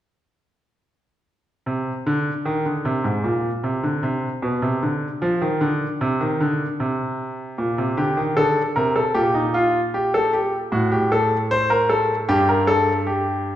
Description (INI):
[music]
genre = classical, baroque-style 3-part fugue for grand piano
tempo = 76 BPM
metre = 4/4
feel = straight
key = unclear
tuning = A4 = 440 Hz
[part]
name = bright concert grand piano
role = solo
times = 1.7-13.6 s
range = G2 to C5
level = -19 LUFS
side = equal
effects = none
[sound]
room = wet recital hall reverb, RT60 1.3 s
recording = heard from further back in the room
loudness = -19 LUFS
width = side -12 dB against mid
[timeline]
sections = 1.3-13.6 A section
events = none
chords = 1.3 N.C.; 7.6 Gm/Bb; 10.7 Am7; 12.3 Gm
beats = | 1.27 2.06 2.84 3.63 | 4.42 5.21 6.01 6.79 | 7.58 8.37 9.15 9.94 | 10.72 11.51 12.29 13.07